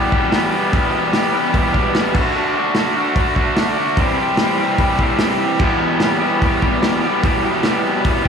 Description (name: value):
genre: garage rock duo or trio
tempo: 148 BPM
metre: 4/4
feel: straight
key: E minor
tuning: A4 = 441 Hz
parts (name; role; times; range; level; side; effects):
- raw garage guitar; riff; 0.0-8.3 s; E2 to G4; -16 LUFS; equal; overdrive, slapback echo
- crunchy breakbeat drum kit; drums; 0.1-8.3 s; crash cymbal, hi-hat, kick drum, snare drum; -20 LUFS; equal; none
room: light reverb, small room reverb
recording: live gig heard through the venue's PA, club reverb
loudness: -14 LUFS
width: side -6 dB against mid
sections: 0.0-8.3 A section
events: none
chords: 0.0 Em; 2.1 D; 4.0 C; 5.6 Em